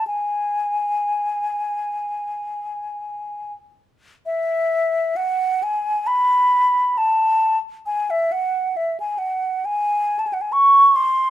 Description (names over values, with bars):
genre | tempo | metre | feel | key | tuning
classical, free, expressive piece for unaccompanied flute | 20-47 BPM (dotted quarters) | 6/8 | rubato | unclear | A4 = 440 Hz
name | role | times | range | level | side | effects
mellow hollow concert flute | solo | 0.0-11.3 s | E5 to C#6 | -18 LUFS | equal | none
room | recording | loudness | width
moderate large studio reverb, RT60 0.8 s | minimal, uncompressed stereo recording | -18 LUFS | side -13 dB against mid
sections
0.0-4.3 A section; 4.3-11.3 A section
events
none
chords
none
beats
| 0.07 2.02 | 4.25 5.63 | 6.98 8.30 | 9.64 10.94